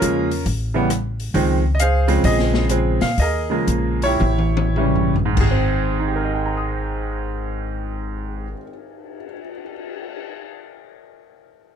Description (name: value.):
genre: jazz piano trio.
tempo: 95-136 BPM.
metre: 4/4.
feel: swing 66% on 8ths.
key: Ab major.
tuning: A4 = 440 Hz.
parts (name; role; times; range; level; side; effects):
bright grand piano; melody; 0.0-9.7 s; Ab2 to Eb6; -20 LUFS; right 2 dB; none.
upright bass; bass; 0.0-8.5 s; Ab1 to Bb2; -22 LUFS; left 1 dB; none.
open jazz drum kit; drums; 0.0-10.3 s; crash cymbal, cymbal swell, hi-hat, kick drum, rim click, snare drum, toms; -26 LUFS; left 3 dB; none.
room: little or no reverb.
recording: close, detailed microphones.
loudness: -17 LUFS.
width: side -8 dB against mid.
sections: 0.0-5.4 A section; 5.4-10.4 B section.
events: slowing down 1.3-5.4; drum fill 4.2-5.4.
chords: 0.5 N.C.; 1.3 Dbmaj7; 2.2 Bbm7; 3.2 Eb9sus4; 4.2 A7; 5.4 Abmaj7.